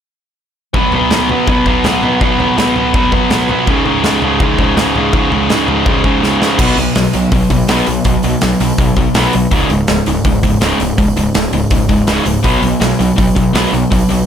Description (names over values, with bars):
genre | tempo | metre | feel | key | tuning
punk rock | 164 BPM | 4/4 | straight | unclear | A4 = 440 Hz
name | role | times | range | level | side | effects
overdriven electric guitar | riff | 0.7-14.3 s | Db2 to Cb4 | -15 LUFS | right 9 dB | none
tight distorted guitar | riff | 0.7-14.3 s | Db2 to Cb4 | -16 LUFS | left 9 dB | distortion
big rock drum kit | drums | 0.7-14.2 s | crash cymbal, hi-hat, kick drum, snare drum, toms | -16 LUFS | equal | none
fuzz picked electric bass | bass | 6.6-14.2 s | Db1 to Cb2 | -17 LUFS | equal | overdrive
room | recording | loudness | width
little or no reverb | none | -10 LUFS | side -8 dB against mid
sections
0.7-6.6 A section; 6.6-14.3 B section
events
drum fill 6.2-6.6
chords
0.7 Cb5; 3.7 Db5; 6.6 Cb5; 9.5 Db5; 12.4 Cb5